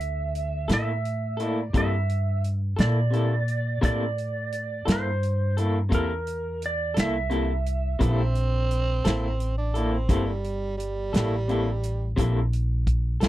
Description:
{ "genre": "slow blues", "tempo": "58 BPM (dotted quarters)", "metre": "12/8", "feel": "straight", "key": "C mixolydian", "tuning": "A4 = 441 Hz", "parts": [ { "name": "clean lap steel guitar", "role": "melody", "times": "0.0-8.3 s", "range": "Bb4 to E5", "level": "-30 LUFS", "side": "right 3 dB", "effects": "slapback echo" }, { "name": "upright bass", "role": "bass", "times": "0.0-13.3 s", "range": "G1 to Bb2", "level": "-26 LUFS", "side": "equal", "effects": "none" }, { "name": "warm soul drum kit", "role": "drums", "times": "0.0-13.3 s", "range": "hi-hat, kick drum, snare drum", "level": "-25 LUFS", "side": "equal", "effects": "none" }, { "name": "electric guitar through a small old amp", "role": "accompaniment", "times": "0.7-13.3 s", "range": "C3 to A4", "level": "-28 LUFS", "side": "left 2 dB", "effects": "tremolo" }, { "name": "growling tenor saxophone", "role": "second line", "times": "8.0-12.1 s", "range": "G3 to D4", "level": "-31 LUFS", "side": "right 4 dB", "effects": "none" } ], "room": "little or no reverb", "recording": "dry, close 1970s-style studio recording", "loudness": "-23 LUFS", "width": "side -15 dB against mid", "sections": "0.0-13.3 A section", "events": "none", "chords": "0.0 C13" }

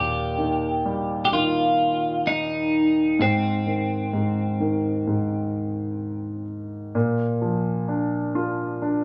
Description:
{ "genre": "pop ballad", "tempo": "64 BPM", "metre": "4/4", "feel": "straight", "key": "Eb major", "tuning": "A4 = 441 Hz", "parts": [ { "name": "twelve-string electric guitar", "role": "melody", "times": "0.0-6.4 s", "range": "C4 to G4", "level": "-26 LUFS", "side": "equal", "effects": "none" }, { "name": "warm grand piano", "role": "accompaniment", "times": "0.0-9.0 s", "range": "Eb2 to F4", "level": "-26 LUFS", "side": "equal", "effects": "none" } ], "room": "moderate large studio reverb, RT60 1.1 s", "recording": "band playing live in one room", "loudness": "-24 LUFS", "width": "mono", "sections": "0.0-9.0 A section", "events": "none", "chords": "0.0 Eb; 3.2 Ab; 6.9 Bb" }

